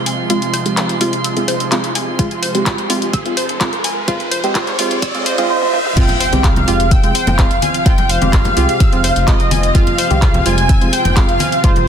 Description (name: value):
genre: progressive house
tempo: 127 BPM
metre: 4/4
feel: straight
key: F minor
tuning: A4 = 435 Hz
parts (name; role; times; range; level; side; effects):
- supersaw pad; sustained chords; 0.0-11.9 s; C3 to F4; -25 LUFS; right 2 dB; sidechain pumping
- dark detuned saw bass; bass; 0.0-11.9 s; Eb1 to F2; -20 LUFS; equal; sidechain pumping, high-pass filter
- riser, swell and impact; sound effects; 0.2-7.9 s; none; -24 LUFS; right 1 dB; none
- drifting glass-harmonics texture; texture; 0.0-5.5 s; C6; -28 LUFS; right 6 dB; chorus, built-in reverb, sidechain pumping
- analog pluck; arpeggios; 0.1-11.7 s; F4 to E6; -23 LUFS; right 1 dB; chorus, sidechain pumping, dub echo
- house drum kit; drums; 0.1-11.9 s; crash cymbal, handclaps, hi-hat, toms; -20 LUFS; left 1 dB; high-pass filter on hats, studio ambience, high-pass filter on snare, high-pass filter on toms, high-pass filter on cymbals
- deep mellow chord stab; stabs; 0.3-11.7 s; G3 to G4; -22 LUFS; right 2 dB; chorus, sidechain pumping, dub echo
- electronic kick drum; drums; 2.2-11.7 s; none; -13 LUFS; equal; studio ambience
- wide unison lead; melody; 5.5-11.9 s; C5 to Ab5; -18 LUFS; equal; wide subtle chorus, sidechain pumping, digital delay
- rich chamber violin section; second line; 6.0-11.9 s; C5 to Ab5; -25 LUFS; left 2 dB; sidechain pumping, dub echo
- congas; percussion; 6.1-11.9 s; none; -22 LUFS; left 3 dB; sidechain pumping on perc
room: light reverb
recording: dense, heavily limited modern master, high-pass filter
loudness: -12 LUFS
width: side -8 dB against mid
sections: 0.0-6.0 A section; 6.0-11.9 B section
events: build-up 0.0-6.0; filter sweep on synth pluck 0.0-6.0; filter sweep on synth stab 0.0-6.0; riser 0.2-6.0; swell 5.0-6.0; drum fill 5.6-6.0; drop 6.0-11.9; impact 6.0-7.9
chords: 0.0 Fm